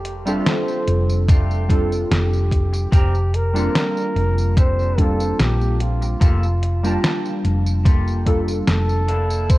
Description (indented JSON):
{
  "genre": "vaporwave",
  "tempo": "73 BPM",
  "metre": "4/4",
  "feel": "straight",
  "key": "unclear",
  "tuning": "A4 = 440 Hz",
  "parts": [
    { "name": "breathy flugelhorn", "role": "melody", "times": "0.0-9.6 s", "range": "F4 to C5", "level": "-26 LUFS", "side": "equal", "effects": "vintage 12-bit sampler grit, tape echo" },
    { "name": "hollow-body short-scale fingered electric bass", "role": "bass", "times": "0.0-9.6 s", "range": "F1 to Bb1", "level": "-20 LUFS", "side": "equal", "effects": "none" },
    { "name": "detuned 8-bit digital drum machine", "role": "drums", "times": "0.0-9.6 s", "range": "hi-hat, snare drum, tambourine", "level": "-24 LUFS", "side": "equal", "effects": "vintage 12-bit sampler grit, small room reverb" },
    { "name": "clean electric guitar", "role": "riff", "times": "0.1-9.6 s", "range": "A3 to Bb4", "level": "-32 LUFS", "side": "left 1 dB", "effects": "wide subtle chorus, tape echo" },
    { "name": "warbly lo-fi synth keys", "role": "accompaniment", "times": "0.3-9.1 s", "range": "G3 to A5", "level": "-24 LUFS", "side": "right 1 dB", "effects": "wide subtle chorus, tape echo" },
    { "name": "electronic kick drum", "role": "drums", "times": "1.3-9.6 s", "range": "none", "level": "-15 LUFS", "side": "equal", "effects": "vintage 12-bit sampler grit, small room reverb" }
  ],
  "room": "light reverb",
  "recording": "cassette tape",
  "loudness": "-16 LUFS",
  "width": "side -18 dB against mid",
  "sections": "0.0-9.6 A section",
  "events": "none",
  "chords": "0.0 F69; 2.9 Bb69/F; 6.2 Gm9/F"
}